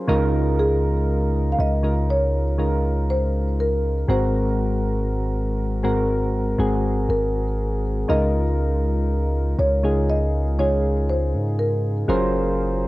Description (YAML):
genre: contemporary R&B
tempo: 60 BPM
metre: 4/4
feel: straight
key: Db major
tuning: A4 = 440 Hz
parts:
  - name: soft electric-piano-like synth keys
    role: accompaniment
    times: 0.0-12.9 s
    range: Ab2 to C5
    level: -22 LUFS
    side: equal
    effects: chorus, cassette tape, plate reverb
  - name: long sustained 808-style bass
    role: bass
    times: 0.1-12.9 s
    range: Gb1 to Ab2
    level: -23 LUFS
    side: equal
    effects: none
  - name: marimba with medium mallets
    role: melody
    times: 0.6-12.5 s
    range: Ab4 to F5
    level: -26 LUFS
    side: equal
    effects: cassette tape, plate reverb, tape echo
room: light reverb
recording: home recording on cassette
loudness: -19 LUFS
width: side -18 dB against mid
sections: 0.0-8.1 A section; 8.1-12.9 B section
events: none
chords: 0.1 Db69; 4.1 Ab9; 8.1 Db69; 12.1 Gbmaj9#11